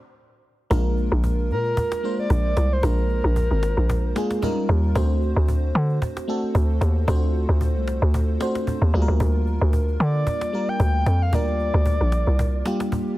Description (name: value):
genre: amapiano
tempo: 113 BPM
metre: 4/4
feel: swing 55% on 16ths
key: unclear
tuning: A4 = 442 Hz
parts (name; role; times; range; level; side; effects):
- FM electric piano with soft pad layer; accompaniment; 0.7-13.2 s; G3 to C5; -27 LUFS; equal; chorus
- hollow log drum bass; bass; 0.7-12.6 s; Ab1 to D3; -20 LUFS; equal; none
- cajon; drums; 0.7-13.1 s; none; -29 LUFS; equal; none
- breathy flute-like synth lead; melody; 1.5-4.4, 10.0-12.9 s; Bb4 to G5; -27 LUFS; equal; chorus, tape echo
room: little or no reverb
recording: heavily compressed radio sound, multiband compression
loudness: -19 LUFS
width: side -17 dB against mid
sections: 0.7-13.2 A section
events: stop 0.0-0.7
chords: 0.4 N.C.; 0.7 Bb7; 4.4 Eb9; 5.0 D7; 8.9 Gm7/D